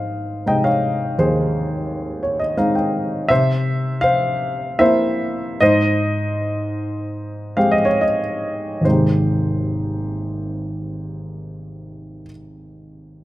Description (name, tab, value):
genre	classical, lyrical solo piano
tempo	44-87 BPM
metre	3/4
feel	rubato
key	Ab major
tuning	A4 = 439 Hz
part	dark grand piano	solo	0.0-13.2 s	Ab1 to G5	-18 LUFS	equal	none
room	light reverb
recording	close, detailed microphones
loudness	-17 LUFS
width	side -15 dB against mid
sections	0.0-8.8 A section; 8.8-12.8 B section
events	grand piano fill 1.9-3.3; slowing down 3.3-8.8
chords	0.0 Ab; 3.3 C7; 5.6 Abmaj7